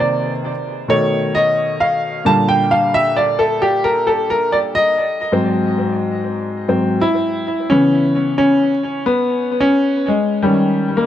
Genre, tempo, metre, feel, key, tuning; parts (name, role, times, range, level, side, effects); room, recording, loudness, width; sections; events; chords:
hip hop; 88 BPM; 4/4; swing 61% on 16ths; A4 = 440 Hz
warm upright piano; solo; 0.0-11.1 s; G#2 to A5; -14 LUFS; equal; tape echo
light reverb, small room ambience; echo-heavy mix; -14 LUFS; side -11 dB against mid
0.0-7.7 A section; 7.7-11.1 B section
upright piano solo 0.0-7.7, 7.7-11.1
0.0 Cm7; 0.9 B7; 2.3 A#6; 5.0 G#7; 7.7 C#m7; 10.4 D#7